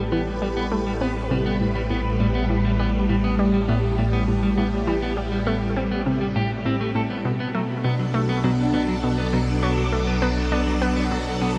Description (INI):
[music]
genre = ambient, sequencer-driven space music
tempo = 101 BPM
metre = 4/4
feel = straight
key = unclear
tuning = A4 = 444 Hz
[part]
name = phased string machine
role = sustained chords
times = 0.0-11.6 s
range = A2 to B4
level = -26 LUFS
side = equal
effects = ensemble chorus, phaser
[part]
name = clean electric guitar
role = arpeggios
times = 0.0-11.6 s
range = F#3 to A4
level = -31 LUFS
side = equal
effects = analog delay
[part]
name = analog pluck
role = riff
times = 0.0-11.6 s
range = A2 to D4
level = -28 LUFS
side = equal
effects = chorus, analog delay
[part]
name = analog drone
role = bass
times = 0.0-11.6 s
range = A1 to B1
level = -31 LUFS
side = equal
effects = chorus
[sound]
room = wet huge ambient reverb, RT60 7.9 s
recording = in a vast, echoing space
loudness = -23 LUFS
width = mono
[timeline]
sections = 0.0-11.6 A section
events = none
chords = 0.0 Am9; 7.3 Bm7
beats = | 0.12 0.72 1.31 1.91 | 2.50 3.09 3.69 4.28 | 4.88 5.47 6.07 6.66 | 7.25 7.85 8.44 9.04 | 9.63 10.22 10.82 11.41